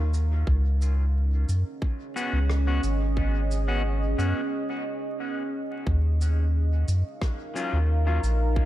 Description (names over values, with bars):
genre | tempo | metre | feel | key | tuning
ambient dub | 89 BPM | 4/4 | straight | Eb minor | A4 = 436 Hz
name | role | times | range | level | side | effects
deep dark ambient pad | sustained chords | 0.0-8.7 s | Db4 to Gb5 | -32 LUFS | right 2 dB | chorus, built-in reverb
soft dub sub bass | bass | 0.0-8.7 s | Ab1 to Gb2 | -22 LUFS | equal | tube saturation
shaker and rim click | drums | 0.1-8.4 s | none | -41 LUFS | left 1 dB | dub echo
electronic kick drum | drums | 0.5-8.7 s | none | -26 LUFS | equal | overdrive
electric guitar at the edge of break-up | stabs | 2.2-8.2 s | Gb3 to Gb4 | -34 LUFS | left 3 dB | spring reverb, dub echo
room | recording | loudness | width
studio ambience | vinyl crackle | -23 LUFS | side -14 dB against mid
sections
0.0-5.9 A section; 5.9-8.7 B section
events
break 4.5-5.9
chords
0.5 Db7sus4; 5.9 Ebm9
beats
| 0.48 1.15 1.82 2.50 | 3.17 3.85 4.52 5.20 | 5.87 6.54 7.22 7.89 | 8.57